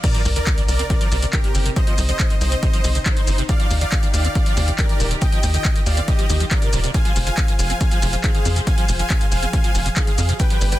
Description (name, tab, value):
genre	uplifting trance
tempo	139 BPM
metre	4/4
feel	straight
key	C minor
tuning	A4 = 441 Hz
part	supersaw chords	melody	0.0-10.8 s	Eb4 to Ab5	-26 LUFS	right 1 dB	sidechain pumping, ping-pong delay
part	dark studio string section	sustained chords	0.0-10.8 s	C3 to D5	-32 LUFS	left 1 dB	sidechain pumping
part	liquid acid bass	arpeggios	0.0-10.7 s	G2 to C4	-29 LUFS	right 2 dB	wide subtle chorus, sidechain pumping, ping-pong delay
part	electronic kick drum	drums	0.0-10.5 s	none	-19 LUFS	equal	none
part	punchy analog drum machine	drums	0.0-10.8 s	crash cymbal, handclaps, hi-hat, shaker	-26 LUFS	equal	none
part	sub drop	sound effects	0.0-1.8 s	none	-30 LUFS	equal	none
part	tight sequencer bass	bass	0.3-10.8 s	Eb1 to F2	-20 LUFS	equal	sidechain pumping
room	little or no reverb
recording	dense, heavily limited modern master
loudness	-16 LUFS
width	side -15 dB against mid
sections	0.0-10.8 A section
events	drop 0.0-10.8; impact 0.0-1.8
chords	0.0 Cmadd9; 3.5 Ebadd9; 6.9 Fm